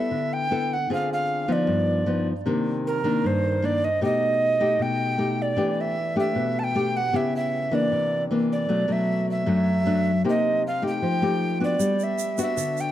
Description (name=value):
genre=bossa nova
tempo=154 BPM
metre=4/4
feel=straight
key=G major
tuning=A4 = 440 Hz
part: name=mellow tenor recorder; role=melody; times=0.0-12.9 s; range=Bb4 to A5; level=-25 LUFS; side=right 2 dB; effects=none
part: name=nylon-string guitar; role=accompaniment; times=0.0-12.9 s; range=F#2 to A4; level=-24 LUFS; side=left 2 dB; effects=none
part: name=egg shaker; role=percussion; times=11.8-12.9 s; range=none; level=-35 LUFS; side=right 10 dB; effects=none
room=moderate plate reverb, RT60 2.9 s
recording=dark, warm production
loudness=-21 LUFS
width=side -12 dB against mid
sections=0.0-12.9 A section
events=none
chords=0.0 G69; 0.9 Dm7b5; 1.7 G7b13; 2.5 Cm9; 4.0 Baug7; 5.6 Em7; 7.1 C#m7b5; 7.9 C9; 8.7 Bm7; 10.2 Cm7; 11.0 F9; 11.8 Gmaj7